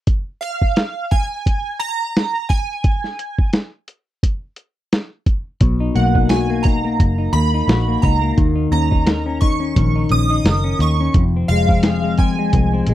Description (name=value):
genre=indie pop, bedroom pop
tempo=87 BPM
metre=4/4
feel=swing 55% on 16ths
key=B lydian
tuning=A4 = 435 Hz
part: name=lo-fi sampler-style drum kit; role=drums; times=0.1-12.9 s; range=hi-hat, kick drum, snare drum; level=-16 LUFS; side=equal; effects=none
part: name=chorused retro synth keys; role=melody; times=0.4-12.9 s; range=E#5 to D#6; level=-23 LUFS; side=right 3 dB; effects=ensemble chorus, slapback echo
part: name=semi-hollow electric guitar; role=accompaniment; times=5.6-12.9 s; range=F2 to A#4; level=-20 LUFS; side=left 4 dB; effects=wide subtle chorus, warbly pitch drift
part: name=vintage muted picked electric bass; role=bass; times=5.6-12.9 s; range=F1 to D#2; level=-18 LUFS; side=equal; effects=none
room=little or no reverb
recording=dry, close 1970s-style studio recording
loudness=-15 LUFS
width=side -13 dB against mid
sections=0.0-12.9 A section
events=none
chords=0.0 N.C.; 5.6 Bmaj7; 8.4 D#m7; 11.2 Fm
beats=| 0.07 0.77 1.46 2.15 | 2.85 3.54 4.23 4.92 | 5.62 6.31 7.00 7.69 | 8.38 9.08 9.77 10.46 | 11.15 11.84 12.54